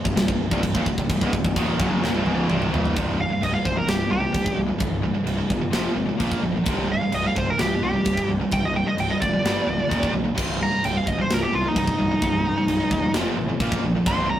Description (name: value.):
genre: heavy metal.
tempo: 129 BPM.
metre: 4/4.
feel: straight.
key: C minor.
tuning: A4 = 439 Hz.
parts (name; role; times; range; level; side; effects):
brassy analog pad; sustained chords; 0.0-2.9 s; none; barely audible; none; none.
cranked stack guitar; riff; 0.0-2.9 s; C2 to F#3; -30 LUFS; equal; none.
high-gain distorted guitar; riff; 0.0-14.4 s; C2 to Bb3; -27 LUFS; right 4 dB; distortion.
tight distorted guitar; riff; 0.0-14.4 s; C2 to Bb3; -30 LUFS; left 4 dB; distortion.
fuzz picked electric bass; bass; 0.1-14.3 s; C1 to C2; -28 LUFS; equal; overdrive.
tight metal drum kit; drums; 0.1-14.2 s; china cymbal, crash cymbal, kick drum, snare drum, toms; -25 LUFS; equal; none.
high-gain lead guitar; melody; 3.2-14.4 s; Eb4 to C6; -24 LUFS; right 1 dB; distortion.
room: light reverb.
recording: rough rehearsal-room recording.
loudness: -20 LUFS.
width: side -11 dB against mid.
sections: 0.0-3.0 A section; 3.0-14.4 B section.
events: drum fill 2.0-3.0; lead electric guitar solo 3.0-14.4.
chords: 0.0 Cm; 3.0 C5; 5.7 F5; 6.2 Bb5; 6.7 C5; 9.5 G5; 9.9 Eb5; 10.4 Cm; 13.1 F5; 13.6 Bb5.